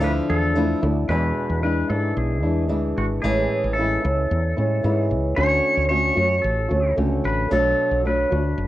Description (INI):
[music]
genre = acoustic pop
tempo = 112 BPM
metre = 4/4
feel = straight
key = unclear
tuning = A4 = 435 Hz
[part]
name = clean lap steel guitar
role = melody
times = 0.0-8.7 s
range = F#4 to C#5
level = -26 LUFS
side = left 1 dB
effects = cassette tape
[part]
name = flamenco guitar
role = accompaniment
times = 0.0-8.7 s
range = E2 to F#4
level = -22 LUFS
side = equal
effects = none
[part]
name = woody fretless electric bass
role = bass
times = 0.0-8.7 s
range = F#1 to A2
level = -23 LUFS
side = equal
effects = none
[sound]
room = light reverb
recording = home recording on cassette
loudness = -19 LUFS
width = side -14 dB against mid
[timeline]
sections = 0.0-1.1 A section; 1.1-8.7 B section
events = none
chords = 0.0 Dmadd9; 1.1 E7; 3.2 Amaj7; 5.4 Dmaj7; 7.5 Bm7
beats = 0.03 0.56 | 1.10 1.63 2.17 2.70 | 3.23 3.77 4.30 4.84 | 5.37 5.91 6.44 6.97 | 7.51 8.04 8.57